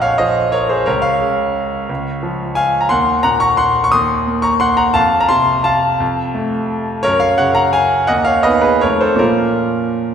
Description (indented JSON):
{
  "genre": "classical, piano waltz",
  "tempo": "151-185 BPM",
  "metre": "3/4",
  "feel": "rubato",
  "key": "Bb minor",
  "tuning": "A4 = 438 Hz",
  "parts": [
    { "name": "clear concert grand piano", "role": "solo", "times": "0.0-10.1 s", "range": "Bb1 to Eb6", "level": "-13 LUFS", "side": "equal", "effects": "none" }
  ],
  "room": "wet concert hall reverb, RT60 1.9 s",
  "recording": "heard from further back in the room",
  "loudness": "-13 LUFS",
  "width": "side -8 dB against mid",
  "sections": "0.0-10.1 A section",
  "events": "none",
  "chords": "0.0 Bbm; 0.9 Bbm/Db; 2.9 Cm7b5/Eb; 5.0 F; 7.0 Gb; 8.1 B/D#; 8.8 F7; 9.2 Bbm"
}